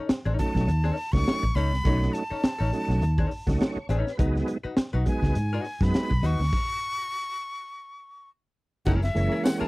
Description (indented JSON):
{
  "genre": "funk",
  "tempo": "103 BPM",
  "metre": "4/4",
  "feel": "swing 56% on 16ths",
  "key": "unclear",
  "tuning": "A4 = 444 Hz",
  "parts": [
    { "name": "archtop guitar, miked and amplified", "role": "accompaniment", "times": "0.0-9.7 s", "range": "C#4 to B4", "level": "-33 LUFS", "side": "left 4 dB", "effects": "wah" },
    { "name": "vintage muted fingered electric bass", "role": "bass", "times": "0.1-9.6 s", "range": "F#1 to G#2", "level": "-25 LUFS", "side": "equal", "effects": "none" },
    { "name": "crunchy breakbeat drum kit", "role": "drums", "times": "0.1-9.6 s", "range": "crash cymbal, hi-hat, kick drum, snare drum", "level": "-26 LUFS", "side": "equal", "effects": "none" },
    { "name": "breathy bright jazz flute", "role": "melody", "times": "0.4-9.7 s", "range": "E5 to C#6", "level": "-32 LUFS", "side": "left 1 dB", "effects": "none" },
    { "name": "tonewheel organ", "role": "stabs", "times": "0.4-9.7 s", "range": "E3 to C#5", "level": "-29 LUFS", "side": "right 2 dB", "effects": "chorus vibrato, fast rotary speaker" },
    { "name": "tambourine", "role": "percussion", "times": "9.5-9.6 s", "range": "none", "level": "-42 LUFS", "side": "left 4 dB", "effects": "none" }
  ],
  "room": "little or no reverb",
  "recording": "dry, close 1970s-style studio recording",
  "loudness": "-23 LUFS",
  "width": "side -22 dB against mid",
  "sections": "0.0-8.9 A section",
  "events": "tonewheel organ fill 3.3-4.2; stop 6.5-8.9",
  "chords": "0.0 B9; 4.2 C#9sus4; 8.9 F#9"
}